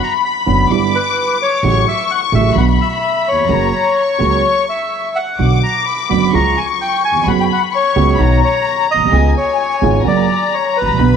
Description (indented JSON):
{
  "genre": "tango",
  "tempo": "129 BPM",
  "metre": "4/4",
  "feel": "rubato",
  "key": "B harmonic minor",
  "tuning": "A4 = 441 Hz",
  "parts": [
    { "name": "bandoneon", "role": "melody", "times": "0.0-11.2 s", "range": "B4 to B5", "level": "-17 LUFS", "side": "equal", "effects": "none" },
    { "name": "warm studio violin section", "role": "second line", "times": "0.0-11.2 s", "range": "G#5 to D6", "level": "-18 LUFS", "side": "left 12 dB", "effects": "tape echo" },
    { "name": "dark concert grand piano", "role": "accompaniment", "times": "0.5-11.2 s", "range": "F#1 to F#4", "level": "-18 LUFS", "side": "right 8 dB", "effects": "none" },
    { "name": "upright bass", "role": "bass", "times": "0.5-11.2 s", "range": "F#1 to C#2", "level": "-16 LUFS", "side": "left 1 dB", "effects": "none" }
  ],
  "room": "moderate plate reverb, RT60 3.3 s",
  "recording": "1960s-style stereo with parts hard left and right",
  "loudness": "-12 LUFS",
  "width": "side -7 dB against mid",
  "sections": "0.0-11.2 A section",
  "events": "none",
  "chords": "0.0 Bmadd9; 0.7 Em7/G; 1.6 F#m/A; 2.6 Bm; 3.5 F#; 5.4 Bm; 6.3 C#; 7.3 F#sus4; 8.2 B; 9.1 C#7; 10.1 F#"
}